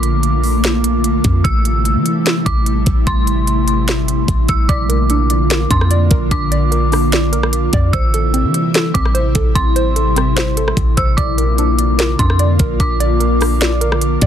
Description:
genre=hip hop, atmospheric cloud-rap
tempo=148 BPM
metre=4/4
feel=half-time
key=Bb lydian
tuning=A4 = 440 Hz
part: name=dark detuned synth bell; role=melody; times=0.0-14.3 s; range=C6 to E6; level=-22 LUFS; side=equal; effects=chorus, low-pass filter, ping-pong delay
part: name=ethereal airy pad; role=sustained chords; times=0.0-14.3 s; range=C3 to F4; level=-19 LUFS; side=left 1 dB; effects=ensemble chorus, built-in reverb, sidechain pumping
part: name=clean 808-style bass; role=bass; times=0.0-14.3 s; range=A1 to E3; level=-16 LUFS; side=equal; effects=none
part: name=trap drum kit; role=drums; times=0.0-14.3 s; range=hi-hat, kick drum, rim click, snare drum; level=-17 LUFS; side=equal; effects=none
part: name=hollow square pluck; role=arpeggios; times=4.7-14.3 s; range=C4 to D5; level=-23 LUFS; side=right 3 dB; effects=chorus, low-pass filter, ping-pong delay
room=little or no reverb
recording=dense, heavily limited modern master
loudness=-12 LUFS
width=side -9 dB against mid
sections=0.0-4.7 A section; 4.7-14.3 B section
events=none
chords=0.0 Bbmaj7; 1.4 Am7; 4.7 Bb; 7.9 Am7; 11.2 Bb

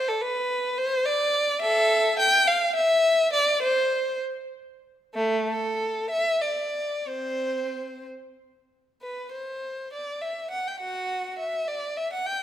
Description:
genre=classical, baroque-style suite movement for unaccompanied violin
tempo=59-72 BPM (dotted quarters)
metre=6/8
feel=rubato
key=C major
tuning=A4 = 439 Hz
part: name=warm violin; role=solo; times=0.0-12.4 s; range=A3 to G5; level=-23 LUFS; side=equal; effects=none
room=moderate scoring stage reverb, RT60 1.7 s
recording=none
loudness=-23 LUFS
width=side -11 dB against mid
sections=0.0-9.0 A section; 9.0-12.4 A section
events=none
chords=none

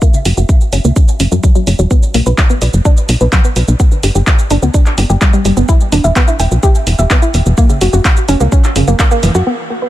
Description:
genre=melodic techno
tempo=127 BPM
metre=4/4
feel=straight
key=unclear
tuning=A4 = 440 Hz
part: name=woody wave-folded pluck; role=arpeggios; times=0.0-9.9 s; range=C#3 to G5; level=-16 LUFS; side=equal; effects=analog chorus, sidechain pumping, dub echo
part: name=electronic kick drum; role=drums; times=0.0-9.1 s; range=none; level=-9 LUFS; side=equal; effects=none
part: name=punchy analog drum machine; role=drums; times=0.0-9.4 s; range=handclaps, hi-hat, shaker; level=-18 LUFS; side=right 1 dB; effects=none
part: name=tight sequencer bass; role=bass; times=0.3-9.4 s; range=E1 to F#2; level=-11 LUFS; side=equal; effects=sidechain pumping
room=little or no reverb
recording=none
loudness=-9 LUFS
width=side -14 dB against mid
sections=0.0-9.5 A section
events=filter sweep on synth pluck 0.0-9.5; band accent 9.0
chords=0.0 F#5; 1.9 B5; 3.8 G; 5.7 E5; 7.6 F#

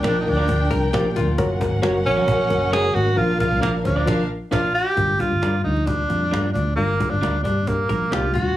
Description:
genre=uptempo 1960s-style soul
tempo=134 BPM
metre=4/4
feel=straight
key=unclear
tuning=A4 = 440 Hz
part: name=breathy tenor saxophone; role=melody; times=0.0-8.6 s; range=Bb3 to Ab4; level=-22 LUFS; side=right 1 dB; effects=none
part: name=dark studio violin section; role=second line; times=0.0-4.7 s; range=Db4 to G5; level=-28 LUFS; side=equal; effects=none
part: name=reed electric piano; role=accompaniment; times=0.0-8.5 s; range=F3 to C5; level=-25 LUFS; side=left 3 dB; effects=fast tremolo
part: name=electric guitar through a small old amp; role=stabs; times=0.0-8.2 s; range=Db4 to D5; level=-29 LUFS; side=right 7 dB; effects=none
part: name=vintage muted fingered electric bass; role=bass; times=0.0-8.5 s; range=Eb1 to G2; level=-23 LUFS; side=equal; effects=none
part: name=cajon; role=drums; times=0.0-8.5 s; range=none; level=-29 LUFS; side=equal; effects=none
part: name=congas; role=percussion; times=0.0-8.6 s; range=none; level=-33 LUFS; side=right 2 dB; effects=none
part: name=archtop guitar, miked and amplified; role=riff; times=0.7-1.6, 7.9-8.6 s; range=F4 to Bb4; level=-28 LUFS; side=left 5 dB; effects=none
room=light reverb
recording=heavily compressed radio sound, small room ambience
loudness=-18 LUFS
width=side -13 dB against mid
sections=0.0-5.0 A section; 5.0-8.6 B section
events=band accent 4.1-5.0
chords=0.0 Bb; 1.4 Gb; 3.2 Bb; 5.0 Gm7

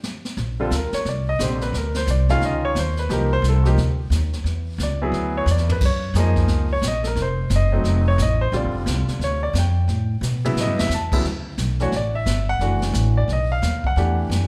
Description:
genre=jazz piano trio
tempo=177 BPM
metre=4/4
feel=swing 63% on 8ths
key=D major from 11.2 s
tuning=A4 = 440 Hz
part: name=jazz brush drum kit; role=drums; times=0.0-14.5 s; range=brushed snare drum, crash cymbal, hi-hat, kick drum, snare drum, toms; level=-30 LUFS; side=equal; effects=none
part: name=upright bass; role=bass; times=0.4-14.5 s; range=F1 to Cb3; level=-23 LUFS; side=equal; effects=none
part: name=warm grand piano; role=melody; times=0.6-14.5 s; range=D2 to A5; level=-26 LUFS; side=equal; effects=none
room=moderate recital hall reverb, RT60 1.2 s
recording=recorded in a church or concert hall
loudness=-21 LUFS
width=mono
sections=0.4-11.2 A section; 11.2-14.5 A section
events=grand piano solo 0.4-14.5; drum fill 5.5-5.8, 10.2-10.9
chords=0.4 Bb6; 1.7 Dm7; 2.4 Dbadd9; 3.1 Cm7; 4.5 E9; 5.8 Gbmaj9; 7.2 F7b9; 8.5 Bb6 (rootless); 9.9 A; 11.2 D5; 12.6 Dadd9/F#; 13.3 B; 14.0 Em9

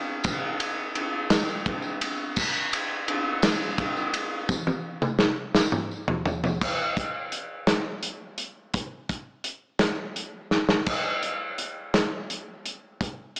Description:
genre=rock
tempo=56 BPM (dotted quarters)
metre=6/8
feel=straight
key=none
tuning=none
part: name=loose indie drum kit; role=drums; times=0.2-13.4 s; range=crash cymbal, hi-hat, kick drum, ride cymbal, snare drum, toms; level=-27 LUFS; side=equal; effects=none
part: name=tambourine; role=percussion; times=0.2-6.5 s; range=none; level=-40 LUFS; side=equal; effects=none
room=moderate echo chamber reverb, RT60 2.4 s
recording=small speaker sound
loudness=-27 LUFS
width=mono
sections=0.0-6.6 A section; 6.6-10.9 B section; 10.9-13.4 C section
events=drum fill 4.5-6.6, 10.5-10.9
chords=none

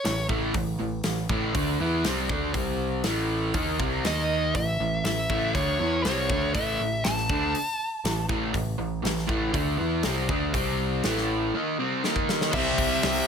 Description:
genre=hard rock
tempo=120 BPM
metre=4/4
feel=straight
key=unclear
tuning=A4 = 440 Hz
part: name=dark smooth lead guitar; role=melody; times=0.0-0.3, 4.1-8.3, 12.5-13.3 s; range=C#5 to A5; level=-28 LUFS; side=equal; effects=overdrive
part: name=overdriven semi-hollow guitar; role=riff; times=0.0-13.3 s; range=A2 to E4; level=-27 LUFS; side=equal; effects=none
part: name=growling picked electric bass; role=bass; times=0.1-13.2 s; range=A1 to E2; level=-31 LUFS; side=equal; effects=overdrive
part: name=big rock drum kit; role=drums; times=0.1-13.1 s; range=crash cymbal, hi-hat, kick drum, snare drum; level=-30 LUFS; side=left 1 dB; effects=none
part: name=mellow tonewheel organ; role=sustained chords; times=12.5-13.3 s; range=C4 to D5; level=-39 LUFS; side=left 1 dB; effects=none
part: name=overdriven electric guitar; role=riff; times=12.5-13.3 s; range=C3 to C4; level=-29 LUFS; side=right 1 dB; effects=none
room=light reverb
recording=none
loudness=-24 LUFS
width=side -7 dB against mid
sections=0.0-12.5 A section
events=drum fill 12.0-12.5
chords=0.0 A5; 2.6 C5; 3.1 A5; 4.1 D#5; 4.6 A5; 10.5 C5; 11.0 A5; 12.0 D#5; 12.5 C

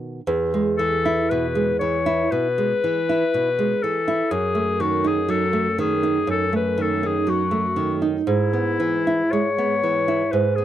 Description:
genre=romantic duo for clarinet and classical guitar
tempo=55-62 BPM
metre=4/4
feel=rubato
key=E major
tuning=A4 = 441 Hz
part: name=nylon-string guitar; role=accompaniment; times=0.0-10.6 s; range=E2 to E4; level=-21 LUFS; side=right 3 dB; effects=none
part: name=bright clarinet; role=melody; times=0.8-10.6 s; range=E4 to C#5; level=-22 LUFS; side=left 4 dB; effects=none
room=light reverb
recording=dry, close 1970s-style studio recording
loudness=-19 LUFS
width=side -11 dB against mid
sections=0.3-10.6 A section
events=none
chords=0.3 E; 4.3 D#dim/F#; 8.2 E/G#

